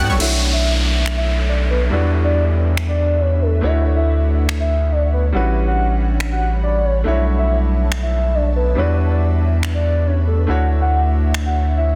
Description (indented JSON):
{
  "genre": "future bass",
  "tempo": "140 BPM",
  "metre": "4/4",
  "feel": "half-time",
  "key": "B minor",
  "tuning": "A4 = 440 Hz",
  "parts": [
    { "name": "soft octave-layered synth lead", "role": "melody", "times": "0.0-12.0 s", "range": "A4 to G5", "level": "-25 LUFS", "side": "equal", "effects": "chorus, phaser, dub echo" },
    { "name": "saturated sub bass", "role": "bass", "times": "0.0-12.0 s", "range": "A1 to A2", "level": "-19 LUFS", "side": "equal", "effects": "none" },
    { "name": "clear grand piano", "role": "accompaniment", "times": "0.2-12.0 s", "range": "G3 to C#5", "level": "-28 LUFS", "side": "equal", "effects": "vintage 12-bit sampler grit" },
    { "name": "ethereal airy pad", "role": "sustained chords", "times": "1.0-12.0 s", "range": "G3 to B5", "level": "-33 LUFS", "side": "equal", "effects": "ensemble chorus, built-in reverb" },
    { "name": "trap drum kit", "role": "drums", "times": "0.2-11.4 s", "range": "crash cymbal, finger snaps", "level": "-29 LUFS", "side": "equal", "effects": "studio reverb, soft clipping on snare" },
    { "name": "downlifter", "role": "sound effects", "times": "0.2-3.6 s", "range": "none", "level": "-28 LUFS", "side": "equal", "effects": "none" }
  ],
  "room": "light reverb, digital ambience",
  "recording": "dense, heavily limited modern master",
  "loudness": "-17 LUFS",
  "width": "mono",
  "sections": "0.2-12.0 A section",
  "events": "none",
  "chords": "0.2 Bm11; 1.9 Em7; 3.6 Dmaj9; 5.3 A13; 7.1 Bm11; 8.8 Em7; 10.5 Dmaj9",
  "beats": "| 0.20 0.63 1.06 1.49 | 1.92 2.35 2.77 3.20 | 3.63 4.06 4.49 4.92 | 5.34 5.77 6.20 6.63 | 7.06 7.49 7.92 8.35 | 8.77 9.20 9.63 10.06 | 10.49 10.92 11.35 11.77"
}